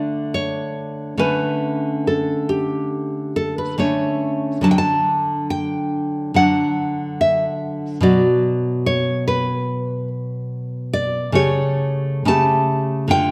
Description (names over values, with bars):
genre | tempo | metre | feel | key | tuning
romantic piece for solo classical guitar | 71 BPM | 4/4 | uneven beats, rubato | D major | A4 = 440 Hz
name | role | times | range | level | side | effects
nylon-string guitar | solo | 0.0-13.3 s | B2 to A5 | -20 LUFS | equal | none
room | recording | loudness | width
moderate recital hall reverb, RT60 1.7 s | none | -20 LUFS | mono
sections
0.0-13.3 A section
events
none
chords
0.0 D5; 1.2 A7/D; 4.7 D; 8.0 Bm; 11.4 A7/C#